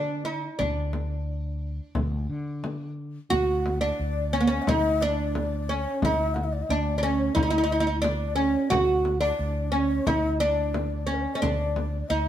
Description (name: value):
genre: Persian modal ensemble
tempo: 89 BPM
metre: 4/4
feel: straight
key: unclear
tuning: A4 = 439 Hz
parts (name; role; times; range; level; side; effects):
- oud; melody; 0.0-12.3 s; Bb3+45c to F#4; -25 LUFS; right 2 dB; none
- fretless electric bass; bass; 0.0-12.3 s; D2 to D3; -29 LUFS; left 1 dB; none
- frame drum; percussion; 0.6-11.9 s; none; -30 LUFS; left 2 dB; none
- breathy mellow low ney; second line; 3.3-12.3 s; Bb4+45c to F#5; -32 LUFS; left 3 dB; none
room: moderate stone room reverb, RT60 1.0 s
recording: band playing live in one room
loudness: -23 LUFS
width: side -10 dB against mid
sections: 0.0-3.3 A section; 3.3-12.3 B section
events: none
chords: none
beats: | 0.60 1.28 1.96 2.63 | 3.31 3.99 4.66 5.34 | 6.02 6.69 7.37 8.04 | 8.72 9.40 10.07 10.75 | 11.42 12.10